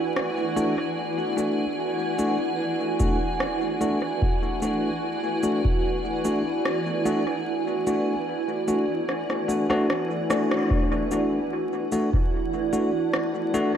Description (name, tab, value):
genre	ambient dub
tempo	74 BPM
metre	4/4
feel	straight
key	E mixolydian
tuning	A4 = 440 Hz
part	granular cloud pad	sustained chords	0.0-13.8 s	E4 to A5	-27 LUFS	right 1 dB	built-in reverb, wide subtle chorus
part	bubbling stepped-filter texture	texture	0.0-13.8 s	F#4	-33 LUFS	right 4 dB	chorus, built-in reverb
part	electronic rim click and shaker	drums	0.2-13.7 s	none	-32 LUFS	equal	overdrive, dub echo
part	bell-like tine electric piano	stabs	0.6-13.7 s	A3 to F#4	-27 LUFS	left 1 dB	vintage 12-bit sampler grit, dub echo
part	electronic kick drum	drums	3.0-5.8, 10.7-12.3 s	none	-25 LUFS	equal	none
room	wet plate reverb, RT60 1.9 s, digital ambience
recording	dreamy mix soaked in reverb, vinyl crackle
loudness	-22 LUFS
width	side -9 dB against mid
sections	0.0-10.7 A section; 10.7-13.8 B section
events	filter sweep on tine electric piano 0.0-10.7; kick drops out 7.5-10.7; drum fill 9.1-10.7; band accent 10.5-10.9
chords	0.0 E9sus4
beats	0.17 | 0.98 1.79 2.60 3.41 | 4.22 5.03 5.84 6.65 | 7.46 8.27 9.09 9.89 | 10.71 11.52 12.33 13.14